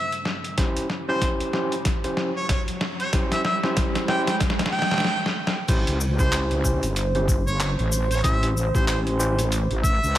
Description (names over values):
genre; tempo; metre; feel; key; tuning
glitch hop; 94 BPM; 4/4; swing 59% on 16ths; unclear; A4 = 436 Hz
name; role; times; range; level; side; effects
clear harmonica; melody; 0.0-10.2 s; B#4 to G5; -28 LUFS; equal; vintage 12-bit sampler grit, tape echo
dark analog pad; sustained chords; 0.0-10.2 s; G3 to B#4; -34 LUFS; right 2 dB; chorus, phaser, sidechain pumping
riser; sound effects; 0.0-5.0 s; none; -34 LUFS; right 1 dB; none
boom bap sampler-style drum kit; drums; 0.1-10.2 s; crash cymbal, handclaps, hi-hat, rim click, snare drum; -27 LUFS; equal; small room reverb
overdriven tine electric piano; stabs; 0.6-9.4 s; C#4 to B#4; -28 LUFS; equal; vintage 12-bit sampler grit, sidechain pumping, tape echo
electronic kick drum; drums; 0.6-10.0 s; none; -24 LUFS; equal; small room reverb
wobble bass; bass; 5.7-10.2 s; G1 to C#2; -24 LUFS; equal; chorus
cabasa; percussion; 5.7-10.1 s; none; -33 LUFS; left 3 dB; none
room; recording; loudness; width
moderate plate reverb, RT60 2.3 s; dreamy mix soaked in reverb; -21 LUFS; side -13 dB against mid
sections
0.0-5.7 A section; 5.7-10.2 B section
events
build-up 0.0-5.7; drum fill 0.0-5.1, 5.1-5.7; riser 0.0-5.1; break 5.1-5.7; drop 5.7-10.2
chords
0.0 A7#9